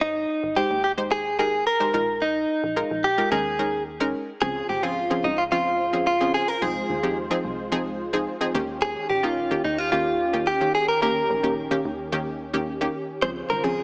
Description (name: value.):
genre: pop.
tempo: 109 BPM.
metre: 4/4.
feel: straight.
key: Ab major.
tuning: A4 = 439 Hz.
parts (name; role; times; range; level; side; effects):
direct-recorded clean electric guitar; melody; 0.0-13.8 s; Eb4 to C5; -22 LUFS; equal; none.
analog pluck; accompaniment; 0.0-13.8 s; Eb3 to C5; -27 LUFS; equal; chorus.
plucky analog bass; bass; 0.0-13.8 s; Ab1 to Eb2; -37 LUFS; equal; none.
warm analog pad; sustained chords; 4.4-13.8 s; Db3 to C5; -31 LUFS; equal; chorus.
room: light reverb.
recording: small speaker sound.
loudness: -21 LUFS.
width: side -34 dB against mid.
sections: 0.0-4.4 A section; 4.4-13.8 B section.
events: none.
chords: 0.0 Abmaj7; 1.9 Bb7sus4; 3.3 Eb7sus4; 4.4 Dbmaj7; 6.6 Ab6/C; 8.5 Eb7; 13.2 Dbmaj7.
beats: | 0.01 0.56 1.11 1.66 | 2.21 2.77 3.32 3.87 | 4.42 4.97 5.52 6.07 | 6.62 7.17 7.72 8.27 | 8.82 9.37 9.92 10.47 | 11.02 11.57 12.12 12.67 | 13.22 13.77.